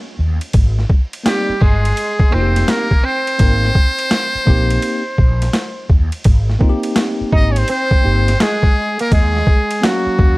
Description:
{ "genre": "hip hop, jazz-hop", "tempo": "84 BPM", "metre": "4/4", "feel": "swing 65% on 16ths", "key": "Ab major", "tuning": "A4 = 443 Hz", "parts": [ { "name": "fretless electric bass", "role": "bass", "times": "0.2-10.4 s", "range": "F1 to Eb2", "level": "-16 LUFS", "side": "equal", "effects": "ensemble chorus" }, { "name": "boom bap sampler-style drum kit", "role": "drums", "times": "0.4-10.4 s", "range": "hi-hat, kick drum, ride cymbal, snare drum", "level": "-15 LUFS", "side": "equal", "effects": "overdrive" }, { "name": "bell-like tine electric piano", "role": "accompaniment", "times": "1.2-10.4 s", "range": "Bb3 to F5", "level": "-22 LUFS", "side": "left 1 dB", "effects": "medium stereo tremolo" }, { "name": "trumpet with metal mute", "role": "melody", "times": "1.3-10.4 s", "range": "Gb4 to Eb5", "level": "-19 LUFS", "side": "equal", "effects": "none" }, { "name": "semi-hollow electric guitar", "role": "second line", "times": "1.3-10.4 s", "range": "Gb3 to Eb4", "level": "-23 LUFS", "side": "right 2 dB", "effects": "analog chorus" } ], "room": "little or no reverb", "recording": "vinyl crackle", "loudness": "-13 LUFS", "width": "side -21 dB against mid", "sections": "0.0-6.3 A section; 6.3-10.4 B section", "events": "none", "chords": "0.0 N.C.; 0.5 Abmaj9; 9.1 Ebm7" }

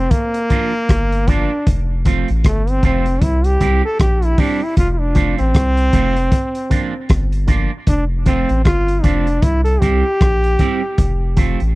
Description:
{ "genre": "roots reggae", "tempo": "77 BPM", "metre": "4/4", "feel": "swing 59% on 16ths", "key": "F major", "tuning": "A4 = 440 Hz", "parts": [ { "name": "brilliant trombone", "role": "melody", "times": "0.0-11.7 s", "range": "A3 to A4", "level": "-19 LUFS", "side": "equal", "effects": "tape echo" }, { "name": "soft dub sub bass", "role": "bass", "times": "0.0-11.8 s", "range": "F1 to C2", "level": "-17 LUFS", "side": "equal", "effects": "none" }, { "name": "crunchy breakbeat drum kit", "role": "drums", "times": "0.1-11.7 s", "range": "hi-hat, kick drum, rim click", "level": "-16 LUFS", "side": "equal", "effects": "none" }, { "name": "electric guitar with an envelope filter", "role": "accompaniment", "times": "0.5-11.6 s", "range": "F3 to G4", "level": "-24 LUFS", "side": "right 6 dB", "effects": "tape echo" } ], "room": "little or no reverb", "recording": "dry, close 1970s-style studio recording", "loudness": "-14 LUFS", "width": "side -20 dB against mid", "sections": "0.0-11.8 A section", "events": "trombone solo 0.0-11.8", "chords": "0.1 Bb; 1.7 F; 3.2 C; 4.8 F; 6.3 Bb; 7.9 F; 9.4 C; 11.0 F" }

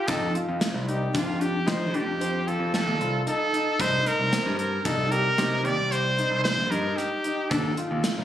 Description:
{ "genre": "progressive instrumental, band music in an uneven meter", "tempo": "113 BPM", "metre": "7/4", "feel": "straight", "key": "F mixolydian", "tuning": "A4 = 437 Hz", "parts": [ { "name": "bright trumpet", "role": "melody", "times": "0.0-7.8 s", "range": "F4 to D5", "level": "-26 LUFS", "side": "equal", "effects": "ping-pong delay" }, { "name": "warm concert grand piano", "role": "arpeggios", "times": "0.1-8.1 s", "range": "C4 to G4", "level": "-30 LUFS", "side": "left 2 dB", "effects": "ping-pong delay" }, { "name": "modern bright picked electric bass", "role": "bass", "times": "0.1-8.2 s", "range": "Bb1 to F3", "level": "-28 LUFS", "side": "equal", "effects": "none" }, { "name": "gated 80s drum kit", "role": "drums", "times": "0.1-8.2 s", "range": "hi-hat, kick drum, snare drum", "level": "-29 LUFS", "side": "equal", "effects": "none" } ], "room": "light reverb", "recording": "recorded on a phone in the room, club reverb", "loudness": "-23 LUFS", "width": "side -11 dB against mid", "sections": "0.0-8.2 A section", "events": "none", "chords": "0.1 F7; 3.8 Cm7; 7.5 Ebmaj7(no3)" }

